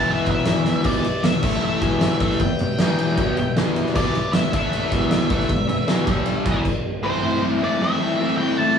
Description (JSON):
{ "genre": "garage rock duo or trio", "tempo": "155 BPM", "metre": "4/4", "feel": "straight", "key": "E minor", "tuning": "A4 = 439 Hz", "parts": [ { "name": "octave-fuzz lead guitar", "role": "melody", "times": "0.0-8.8 s", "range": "C5 to A5", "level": "-26 LUFS", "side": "equal", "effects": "distortion" }, { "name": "overdriven combo organ", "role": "sustained chords", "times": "0.0-6.5 s", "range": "E4 to G5", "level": "-31 LUFS", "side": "left 3 dB", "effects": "none" }, { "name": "biting overdriven guitar", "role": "riff", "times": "0.0-8.8 s", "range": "E2 to E4", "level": "-21 LUFS", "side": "left 1 dB", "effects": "none" }, { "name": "oversized low-tuned drum kit", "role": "drums", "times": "0.3-6.7 s", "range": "crash cymbal, kick drum, ride cymbal, snare drum", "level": "-22 LUFS", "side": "equal", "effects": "none" } ], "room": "wet studio reverb, RT60 0.6 s", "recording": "band playing live in one room, cassette tape, studio ambience", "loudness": "-18 LUFS", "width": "side -7 dB against mid", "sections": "0.9-7.0 A section; 7.0-8.8 B section", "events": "drum fill 0.7; stop 6.7-7.0", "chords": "0.0 E5; 0.9 Em; 1.4 A5; 1.8 Em; 4.5 A5; 4.9 Em; 6.1 G5; 6.5 E5; 7.0 Am" }